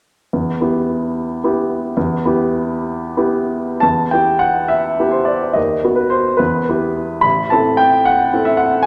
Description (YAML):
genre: classical, romantic character piece for solo piano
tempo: 56-77 BPM (dotted quarters)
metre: 6/8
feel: rubato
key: E minor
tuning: A4 = 440 Hz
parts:
  - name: warm upright piano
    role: solo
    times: 0.3-8.9 s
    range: A1 to B5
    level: -16 LUFS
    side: equal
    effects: none
room: wet recital hall reverb, RT60 1.7 s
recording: none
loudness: -17 LUFS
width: mono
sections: 0.3-3.8 A section; 3.8-8.9 B section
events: none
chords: 0.3 Em; 5.6 B/D#; 6.4 Em; 7.2 Am